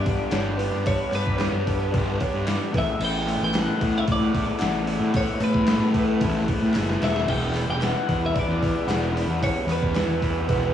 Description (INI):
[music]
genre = indie rock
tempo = 112 BPM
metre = 4/4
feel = straight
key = unclear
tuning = A4 = 439 Hz
[part]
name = twelve-string electric guitar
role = melody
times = 0.0-10.7 s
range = B4 to G5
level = -29 LUFS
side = left 1 dB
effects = spring reverb, tape echo
[part]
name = soft synth bell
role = second line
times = 0.0-10.7 s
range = B4 to F#5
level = -36 LUFS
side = equal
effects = chorus
[part]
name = overdriven electric guitar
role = riff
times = 0.0-10.7 s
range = E2 to G4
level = -32 LUFS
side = right 6 dB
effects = wide subtle chorus
[part]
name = raw garage guitar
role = riff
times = 0.0-10.7 s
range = E3 to B4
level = -28 LUFS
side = left 5 dB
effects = overdrive
[part]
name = fuzz fingered electric bass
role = bass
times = 0.0-10.7 s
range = E1 to A2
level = -25 LUFS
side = equal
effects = overdrive
[part]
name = gated 80s digital drum machine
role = drums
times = 0.1-10.6 s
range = crash cymbal, hi-hat, kick drum, snare drum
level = -28 LUFS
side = equal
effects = gated reverb, gated reverb snare
[part]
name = group handclap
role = percussion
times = 0.3-10.1 s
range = none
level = -39 LUFS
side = left 14 dB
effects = none
[sound]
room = light reverb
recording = worn, warbling old tape, cassette tape, warbly pitch drift, studio ambience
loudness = -21 LUFS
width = side -10 dB against mid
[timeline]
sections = 0.0-10.7 A section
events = drum fill 6.7-7.3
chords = 0.0 G; 2.7 Asus2; 7.3 Em7